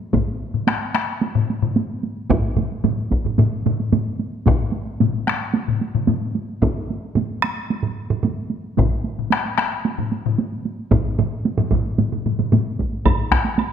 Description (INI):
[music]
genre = japanese traditional, taiko drum ensemble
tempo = 111 BPM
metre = 4/4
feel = straight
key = none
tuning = none
[part]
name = solo taiko drums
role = percussion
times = 0.0-13.7 s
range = none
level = -24 LUFS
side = right 5 dB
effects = none
[part]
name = taiko ensemble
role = percussion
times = 0.1-13.4 s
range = none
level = -22 LUFS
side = left 6 dB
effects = none
[part]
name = taiko ensemble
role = percussion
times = 0.1-13.4 s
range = none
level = -21 LUFS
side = equal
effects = none
[part]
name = solo taiko drums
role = percussion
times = 2.3-12.6 s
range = none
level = -23 LUFS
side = right 6 dB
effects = none
[part]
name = woodblock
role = percussion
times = 13.1-13.7 s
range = none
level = -26 LUFS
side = right 6 dB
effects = none
[sound]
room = wet recital hall reverb, RT60 1.7 s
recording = none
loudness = -19 LUFS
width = side -8 dB against mid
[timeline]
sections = 0.0-13.1 A section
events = none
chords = none